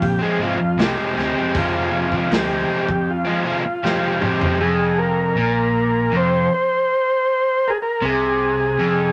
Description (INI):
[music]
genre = psychedelic rock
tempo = 79 BPM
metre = 4/4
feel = straight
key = F minor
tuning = A4 = 440 Hz
[part]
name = combo organ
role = melody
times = 0.0-9.1 s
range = F4 to C5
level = -22 LUFS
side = equal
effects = none
[part]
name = crunchy overdriven guitar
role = riff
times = 0.0-9.1 s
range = F2 to C4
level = -23 LUFS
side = equal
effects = none
[part]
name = fingered electric bass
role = bass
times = 0.0-9.1 s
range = F1 to Bb2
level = -30 LUFS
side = equal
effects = none
[part]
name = crunchy breakbeat drum kit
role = drums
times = 0.0-4.6 s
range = hi-hat, kick drum, snare drum, toms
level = -26 LUFS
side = equal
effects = none
[sound]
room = moderate club reverb, RT60 0.7 s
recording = none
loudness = -19 LUFS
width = mono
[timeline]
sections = 0.0-4.6 A section; 4.6-9.1 B section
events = drum fill 3.8-4.6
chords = 0.0 Fm